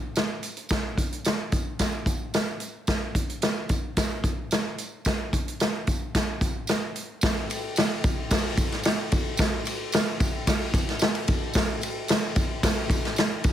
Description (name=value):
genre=soul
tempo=111 BPM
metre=4/4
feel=straight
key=none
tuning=none
part: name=swinging big-band drum kit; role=drums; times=0.2-13.5 s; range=hi-hat, kick drum, ride cymbal, snare drum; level=-24 LUFS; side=equal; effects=none
part: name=tambourine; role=percussion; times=0.2-13.5 s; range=none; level=-37 LUFS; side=right 3 dB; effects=none
room=little or no reverb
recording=heavily compressed radio sound, multiband compression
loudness=-24 LUFS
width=side -11 dB against mid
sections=0.0-7.2 A section; 7.2-13.5 B section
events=none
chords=none